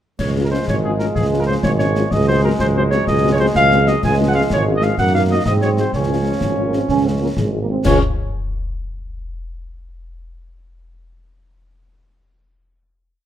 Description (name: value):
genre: military-style march for wind band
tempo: 125 BPM (dotted quarters)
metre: 6/8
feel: straight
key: Db major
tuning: A4 = 442 Hz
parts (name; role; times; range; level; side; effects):
- mellow cornet; melody; 0.2-8.0 s; Ab4 to Ab5; -20 LUFS; left 1 dB; none
- warm trombone section; sustained chords; 0.2-8.0 s; Eb3 to Db4; -23 LUFS; right 2 dB; none
- warm tuba; bass; 0.2-8.0 s; Ab1 to Ab2; -18 LUFS; right 2 dB; none
- concert snare drum, clash cymbals and concert bass drum; drums; 0.2-8.0 s; none; -24 LUFS; left 1 dB; none
- mellow French horn section; accompaniment; 0.4-8.0 s; Ab3 to Gb4; -25 LUFS; left 6 dB; none
- clear euphonium; second line; 6.4-7.8 s; Ab3 to Db4; -22 LUFS; right 5 dB; none
room: light reverb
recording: none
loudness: -14 LUFS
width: side -10 dB against mid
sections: 0.2-7.9 A section; 7.9-8.8 final chord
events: none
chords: 0.2 Db; 2.1 Ab7/Db; 4.0 Db; 5.0 Ebm/Gb; 5.5 Ab7; 5.9 Db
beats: | 0.20 0.68 | 1.16 1.64 | 2.11 2.59 | 3.07 3.55 | 4.03 4.51 | 4.99 5.46 | 5.94 6.42 | 6.90 7.38 | 7.86